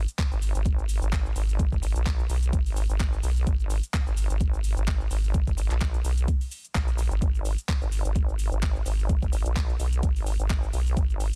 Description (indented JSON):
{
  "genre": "bass house",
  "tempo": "128 BPM",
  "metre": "4/4",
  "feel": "swing 56% on 16ths",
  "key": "G# minor",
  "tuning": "A4 = 440 Hz",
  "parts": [
    { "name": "vowel-sweep wobble bass", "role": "bass", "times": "0.0-11.3 s", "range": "G#1 to B1", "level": "-28 LUFS", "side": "equal", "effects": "chorus, sidechain pumping" },
    { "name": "garage drum kit", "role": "drums", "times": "0.1-11.4 s", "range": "handclaps, hi-hat, shaker", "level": "-39 LUFS", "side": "equal", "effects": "none" },
    { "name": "electronic kick drum", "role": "drums", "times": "0.2-11.1 s", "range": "none", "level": "-28 LUFS", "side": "equal", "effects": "overdrive" }
  ],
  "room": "little or no reverb",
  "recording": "none",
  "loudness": "-26 LUFS",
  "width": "mono",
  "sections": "0.0-11.4 A section",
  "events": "none",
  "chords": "none"
}